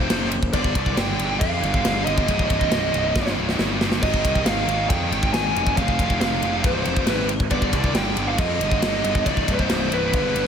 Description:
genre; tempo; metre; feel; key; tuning
heavy metal; 138 BPM; 4/4; straight; C harmonic minor; A4 = 440 Hz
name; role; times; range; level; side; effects
smooth overdriven lead guitar; melody; 0.0-10.5 s; B4 to Ab5; -24 LUFS; right 1 dB; ping-pong delay
heavy high-gain guitar; riff; 0.0-10.5 s; C2 to Eb3; -25 LUFS; equal; distortion
fuzz picked electric bass; bass; 0.0-10.5 s; C1 to F2; -26 LUFS; equal; overdrive
tight metal drum kit; drums; 0.1-10.5 s; crash cymbal, kick drum, ride cymbal, snare drum; -24 LUFS; equal; none
room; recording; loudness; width
moderate lush hall reverb, RT60 2.2 s; big arena sound; -19 LUFS; side -8 dB against mid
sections
0.0-10.5 A section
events
drum fill 3.2-4.0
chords
0.0 F5; 0.5 G5; 2.3 Cm; 4.0 Ab; 5.6 Fm; 7.5 G5; 9.3 C5

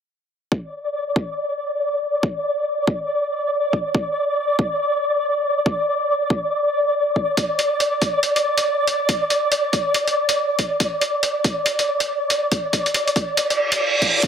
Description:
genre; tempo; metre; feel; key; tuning
deep dubstep; 140 BPM; 4/4; swing 61% on 16ths, half-time; unclear; A4 = 435 Hz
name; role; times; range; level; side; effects
electronic kick drum; drums; 0.5-14.3 s; none; -22 LUFS; equal; high-pass filter on kick
flickering grainy texture; texture; 0.7-14.3 s; D5; -20 LUFS; equal; built-in reverb
electronic hi-hat; drums; 7.4-14.3 s; none; -22 LUFS; equal; overdrive
reverse cymbal; sound effects; 13.5-14.2 s; none; -19 LUFS; right 3 dB; none
room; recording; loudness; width
moderate lush hall reverb, RT60 1.6 s, digital ambience; heavily compressed radio sound; -18 LUFS; side -8 dB against mid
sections
0.5-14.3 A section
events
reverse cymbal 13.5-14.2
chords
none

